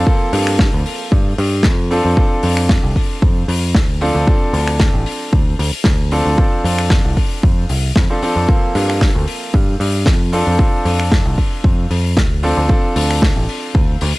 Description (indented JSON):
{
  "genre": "nu-disco, nu disco",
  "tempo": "114 BPM",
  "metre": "4/4",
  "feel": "straight",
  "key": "F major",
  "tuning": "A4 = 440 Hz",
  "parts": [
    { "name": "bright concert grand piano", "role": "accompaniment", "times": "0.0-14.0 s", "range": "F3 to A4", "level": "-20 LUFS", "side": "equal", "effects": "analog delay" },
    { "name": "picked electric bass", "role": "bass", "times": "0.0-14.2 s", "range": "A1 to G2", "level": "-17 LUFS", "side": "equal", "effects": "none" },
    { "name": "electronic kick drum", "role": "drums", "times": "0.1-13.9 s", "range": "none", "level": "-14 LUFS", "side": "equal", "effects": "none" },
    { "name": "modern studio drum kit", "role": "drums", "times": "0.3-14.1 s", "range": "finger snaps, hi-hat, snare drum", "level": "-22 LUFS", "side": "left 1 dB", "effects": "none" }
  ],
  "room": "small room ambience",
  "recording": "dry, gritty hardware recording, cassette tape",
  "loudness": "-13 LUFS",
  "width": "side -21 dB against mid",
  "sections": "0.0-14.2 A section",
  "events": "none",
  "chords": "0.1 Gm11; 1.9 F6; 4.0 Dm7; 6.4 F6; 8.5 Gm11; 10.3 F6; 12.4 Dm7",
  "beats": "| 0.07 0.59 1.12 1.65 | 2.17 2.70 3.22 3.75 | 4.28 4.80 5.33 5.86 | 6.38 6.91 7.43 7.96 | 8.49 9.01 9.54 10.07 | 10.59 11.12 11.64 12.17 | 12.70 13.22 13.75"
}